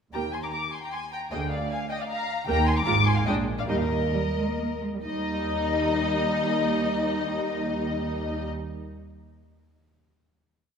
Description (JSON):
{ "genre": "quick classical-period movement for string orchestra", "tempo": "130-158 BPM", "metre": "3/4", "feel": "rubato", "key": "Eb major", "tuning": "A4 = 440 Hz", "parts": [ { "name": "muted symphonic violin section", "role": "melody", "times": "0.1-8.4 s", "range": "Eb5 to D6", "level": "-30 LUFS", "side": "left 7 dB", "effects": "none" }, { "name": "muted symphonic violin section", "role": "second line", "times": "0.1-8.4 s", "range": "Eb4 to Bb5", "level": "-31 LUFS", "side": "left 1 dB", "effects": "none" }, { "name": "muted studio viola section", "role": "accompaniment", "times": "0.1-8.4 s", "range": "G3 to Ab4", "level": "-32 LUFS", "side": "right 2 dB", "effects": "none" }, { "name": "muted symphonic cello section", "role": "bass", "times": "0.1-8.4 s", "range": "D2 to Bb3", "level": "-30 LUFS", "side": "right 2 dB", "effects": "none" }, { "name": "muted symphonic double bass section", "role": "bass", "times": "0.1-8.4 s", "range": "Ab1 to Eb2", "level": "-33 LUFS", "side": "right 2 dB", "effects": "none" } ], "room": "wet concert hall reverb, RT60 2.0 s", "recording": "minimal, uncompressed stereo recording", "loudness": "-24 LUFS", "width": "side -6 dB against mid", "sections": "0.1-5.0 A section; 5.0-7.7 final chord", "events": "slowing down 1.9-5.0", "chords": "0.1 Eb; 1.3 Bb7/D; 2.5 Eb; 2.9 Fm/Ab; 3.3 Bb7; 3.7 Eb", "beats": "| 0.14 0.53 0.93 | 1.32 1.71 2.09 | 2.47 2.86 3.27 | 3.69 4.14 4.59 | 5.04 5.49 5.93 | 6.37 6.81 7.24" }